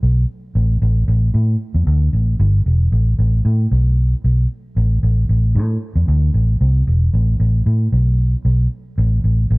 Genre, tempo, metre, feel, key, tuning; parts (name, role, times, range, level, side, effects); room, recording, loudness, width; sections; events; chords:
funk; 114 BPM; 4/4; straight; A minor; A4 = 443 Hz
vintage muted fingered electric bass; solo; 0.0-9.6 s; E1 to A2; -14 LUFS; equal
little or no reverb; dark, warm production; -14 LUFS; side -28 dB against mid
0.0-2.9 A section; 2.9-9.6 B section